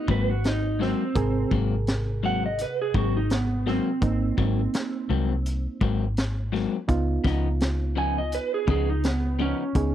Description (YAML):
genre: straight-eighth soul blues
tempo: 84 BPM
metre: 4/4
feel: swing 54% on 16ths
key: Ab mixolydian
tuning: A4 = 440 Hz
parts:
  - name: electric guitar through a small old amp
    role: melody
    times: 0.0-9.9 s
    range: Cb4 to Ab5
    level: -28 LUFS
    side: right 4 dB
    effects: spring reverb
  - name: overdriven reed electric piano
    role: accompaniment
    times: 0.0-9.9 s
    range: C3 to Bb4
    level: -33 LUFS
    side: right 5 dB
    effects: none
  - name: electric guitar through a small old amp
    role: stabs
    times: 0.1-9.6 s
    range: Ab2 to Eb4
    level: -28 LUFS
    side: left 7 dB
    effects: none
  - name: vintage muted fingered electric bass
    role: bass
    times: 0.1-9.9 s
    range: Ab1 to Db2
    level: -26 LUFS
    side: equal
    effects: none
  - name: crunchy breakbeat drum kit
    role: drums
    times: 0.1-9.9 s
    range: hi-hat, kick drum, snare drum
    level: -28 LUFS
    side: equal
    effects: none
room: little or no reverb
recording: dry, close 1970s-style studio recording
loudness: -23 LUFS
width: side -11 dB against mid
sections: 0.0-9.9 A section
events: none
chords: 0.0 Ab9; 6.9 Db9